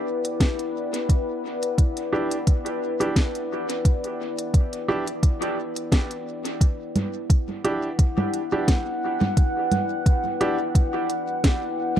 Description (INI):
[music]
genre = ambient dub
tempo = 87 BPM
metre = 4/4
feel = swing 54% on 16ths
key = E minor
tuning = A4 = 440 Hz
[part]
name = deep dark ambient pad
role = sustained chords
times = 0.0-12.0 s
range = E4 to G5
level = -27 LUFS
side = left 2 dB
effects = chorus, built-in reverb
[part]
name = organic electronic drum kit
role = drums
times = 0.2-12.0 s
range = congas, hi-hat, snare drum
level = -27 LUFS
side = right 1 dB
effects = dub echo
[part]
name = electronic kick drum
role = drums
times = 0.4-11.6 s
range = none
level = -18 LUFS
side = equal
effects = none
[part]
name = warm upright piano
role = stabs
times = 2.1-10.6 s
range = D4 to G4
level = -28 LUFS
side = right 2 dB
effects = dub echo
[sound]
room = light reverb, digital ambience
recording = none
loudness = -21 LUFS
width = side -10 dB against mid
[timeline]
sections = 0.0-6.6 A section; 6.6-12.0 B section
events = none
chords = 0.0 Em7